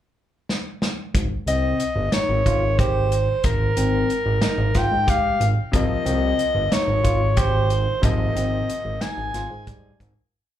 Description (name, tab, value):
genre	progressive instrumental, band music in an uneven meter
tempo	183 BPM (eighths)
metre	7/8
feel	straight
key	Ab major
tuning	A4 = 440 Hz
part	warm soul drum kit	drums	0.5-10.2 s	hi-hat, kick drum, snare drum	-24 LUFS	equal	none
part	fat analog bass	bass	1.1-10.1 s	G1 to Ab2	-22 LUFS	right 1 dB	none
part	breathy soprano saxophone	melody	1.5-10.0 s	Bb4 to Ab5	-23 LUFS	equal	slapback echo, ping-pong delay
part	overdriven tine electric piano	arpeggios	1.5-10.0 s	G3 to G4	-28 LUFS	moving between left 4 dB and right 3 dB	auto-pan, slapback echo
part	bright grand piano	accompaniment	5.7-10.3 s	C3 to Bb3	-30 LUFS	left 4 dB	slapback echo
room	light reverb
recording	live gig heard through the venue's PA, club reverb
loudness	-19 LUFS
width	side -11 dB against mid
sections	0.0-1.1 pickup bar; 1.1-10.3 A section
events	drum fill 0.5-1.1; fade-out 8.0-10.3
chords	0.0 N.C.; 1.1 Abmaj9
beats	0.16 0.49 0.81 | 1.14 1.47 1.80 2.13 2.46 2.78 3.11 | 3.44 3.77 4.10 4.42 4.75 5.08 5.41 | 5.74 6.06 6.39 6.72 7.05 7.38 7.70 | 8.03 8.36 8.69 9.02 9.34 9.67 10.00